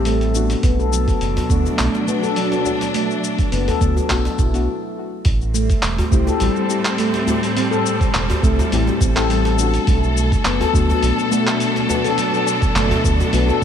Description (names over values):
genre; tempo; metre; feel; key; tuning
organic downtempo; 104 BPM; 4/4; swing 54% on 16ths; unclear; A4 = 440 Hz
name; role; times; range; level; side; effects
muted felt-like synth keys; accompaniment; 0.0-13.6 s; A3 to A4; -24 LUFS; left 4 dB; chorus, sidechain pumping, ping-pong delay
rich studio string section; sustained chords; 0.0-13.6 s; A2 to A4; -24 LUFS; equal; sidechain pumping
handpan; arpeggios; 0.0-13.6 s; F#3 to A4; -21 LUFS; left 1 dB; ping-pong delay
round analog bass; bass; 0.0-13.5 s; E1 to D2; -20 LUFS; right 1 dB; none
dusty soul sampler-style drum kit; drums; 0.1-13.6 s; cabasa, handclaps, hi-hat; -26 LUFS; left 1 dB; none
djembe; percussion; 0.2-13.6 s; none; -27 LUFS; left 1 dB; none
electronic kick drum; drums; 0.6-13.6 s; none; -19 LUFS; right 1 dB; none
room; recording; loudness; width
moderate plate reverb, RT60 2.6 s; bright 1980s-style digital production; -16 LUFS; side -8 dB against mid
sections
0.0-5.3 A section; 5.3-13.6 B section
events
stop 4.7-5.3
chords
0.0 Am7; 0.6 Bm7; 5.3 Am7; 9.9 Bm7